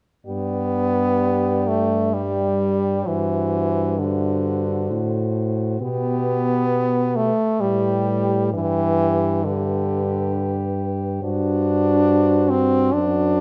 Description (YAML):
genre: classical, lyrical piece for horn quartet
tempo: 66 BPM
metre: 3/4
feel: uneven beats, rubato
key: G major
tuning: A4 = 440 Hz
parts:
  - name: warm French horn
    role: melody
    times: 0.3-13.4 s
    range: B4 to D5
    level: -32 LUFS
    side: equal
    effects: none
  - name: warm French horn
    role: second line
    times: 0.3-13.4 s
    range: F#4 to G4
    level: -30 LUFS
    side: equal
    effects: none
  - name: clear French horn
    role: accompaniment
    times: 0.3-13.4 s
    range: D3 to D4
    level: -23 LUFS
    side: equal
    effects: none
  - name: dark French horn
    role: bass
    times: 0.3-13.4 s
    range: F#2 to B2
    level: -26 LUFS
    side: equal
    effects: none
room: light reverb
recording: close, detailed microphones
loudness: -21 LUFS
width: mono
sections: 0.3-13.4 A section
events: none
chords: 0.3 G; 3.1 D7/G; 5.8 G/B; 8.5 G; 11.2 D7/G